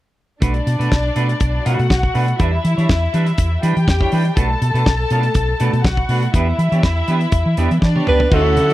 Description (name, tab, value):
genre	disco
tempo	122 BPM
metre	4/4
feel	straight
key	B minor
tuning	A4 = 441 Hz
part	dark studio violin section	second line	0.4-8.7 s	D4 to A5	-22 LUFS	left 2 dB	none
part	clean electric guitar	accompaniment	0.4-8.7 s	G3 to D5	-24 LUFS	right 5 dB	spring reverb
part	hollow-body short-scale fingered electric bass	bass	0.4-8.7 s	B1 to E3	-17 LUFS	equal	none
part	damped 70s drum kit	drums	0.4-8.7 s	crash cymbal, hi-hat, kick drum, snare drum, toms	-18 LUFS	equal	none
part	warm alto saxophone	melody	8.1-8.7 s	A4 to B4	-15 LUFS	right 2 dB	none
part	rich studio string section	sustained chords	8.3-8.7 s	F#3 to E4	-23 LUFS	left 1 dB	none
room	little or no reverb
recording	dry, close 1970s-style studio recording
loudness	-14 LUFS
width	side -15 dB against mid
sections	0.4-8.3 A section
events	drum fill 7.8-8.3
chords	0.4 Bm7; 2.4 Em7; 4.4 Bm7; 6.3 Em7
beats	| 0.42 0.92 1.41 1.90 | 2.40 2.89 3.38 3.88 | 4.37 4.86 5.36 5.85 | 6.34 6.84 7.33 7.82 | 8.32